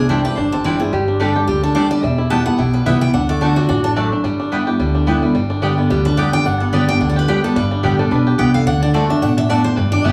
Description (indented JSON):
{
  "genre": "bluegrass",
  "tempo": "217 BPM",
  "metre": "4/4",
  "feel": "swing 56% on 8ths",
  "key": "G major",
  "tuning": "A4 = 440 Hz",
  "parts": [
    { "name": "picked steel-string acoustic guitar", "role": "melody", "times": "0.0-10.1 s", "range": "F#4 to A5", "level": "-24 LUFS", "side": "equal", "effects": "none" },
    { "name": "picked steel-string acoustic guitar", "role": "accompaniment", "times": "0.0-10.1 s", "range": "E2 to G4", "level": "-20 LUFS", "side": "equal", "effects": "none" },
    { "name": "bluegrass banjo", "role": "arpeggios", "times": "0.0-10.1 s", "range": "D3 to G4", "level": "-23 LUFS", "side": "equal", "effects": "tape echo" },
    { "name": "upright bass", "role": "bass", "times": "0.0-10.1 s", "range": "E1 to D2", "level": "-24 LUFS", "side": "equal", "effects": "none" },
    { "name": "mandolin", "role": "stabs", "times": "0.1-10.1 s", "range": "A3 to A5", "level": "-26 LUFS", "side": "equal", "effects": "none" },
    { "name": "lap resonator guitar", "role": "second line", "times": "0.9-1.4, 7.8-8.3 s", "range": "G4 to B4", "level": "-25 LUFS", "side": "equal", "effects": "none" }
  ],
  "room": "moderate small room ambience, RT60 0.5 s",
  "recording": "small room reverb",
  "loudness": "-16 LUFS",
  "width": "mono",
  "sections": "0.0-5.3 A section; 5.3-10.1 B section",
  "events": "none",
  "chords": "0.0 Cadd9; 0.9 Gsus2; 2.0 Em; 3.1 D; 4.2 G6; 5.3 G; 8.7 D"
}